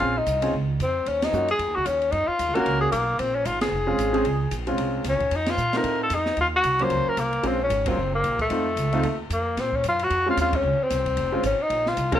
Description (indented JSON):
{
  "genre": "jazz, small-group swing and bop",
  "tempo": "226 BPM",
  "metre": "4/4",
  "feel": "swing 59% on 8ths",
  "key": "Bb minor",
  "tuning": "A4 = 440 Hz",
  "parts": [
    { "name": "breathy tenor saxophone", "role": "melody", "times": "0.0-12.2 s", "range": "A3 to C5", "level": "-23 LUFS", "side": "left 2 dB", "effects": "plate reverb" },
    { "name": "clear grand piano", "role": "accompaniment", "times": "0.0-12.2 s", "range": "Gb3 to Ab4", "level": "-26 LUFS", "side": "right 1 dB", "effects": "none" },
    { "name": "upright bass", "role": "bass", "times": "0.0-12.2 s", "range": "F1 to Bb2", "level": "-28 LUFS", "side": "right 1 dB", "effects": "none" },
    { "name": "open jazz drum kit", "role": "drums", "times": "0.0-12.2 s", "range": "hi-hat, kick drum, ride cymbal, snare drum", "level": "-33 LUFS", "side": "equal", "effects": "none" }
  ],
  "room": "moderate club reverb, RT60 0.6 s",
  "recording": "none",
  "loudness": "-21 LUFS",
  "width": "side -10 dB against mid",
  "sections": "0.0-9.6 A section; 9.6-12.2 A section",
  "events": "band accent 1.2, 3.6, 5.5, 7.8, 10.5",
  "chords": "0.0 Bbm9; 1.1 Ebm9; 3.2 Bbm9; 5.3 F7; 6.4 Ebm9; 7.4 Bbm9; 8.0 Gb; 8.5 F7; 9.6 Bbm9",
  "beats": "| 0.01 0.27 0.54 0.80 | 1.07 1.33 1.60 1.86 | 2.13 2.40 2.66 2.93 | 3.19 3.46 3.72 3.99 | 4.25 4.52 4.79 5.05 | 5.32 5.58 5.85 6.11 | 6.38 6.65 6.91 7.18 | 7.45 7.71 7.98 8.24 | 8.51 8.78 9.04 9.31 | 9.58 9.84 10.11 10.38 | 10.64 10.91 11.18 11.44 | 11.71 11.98"
}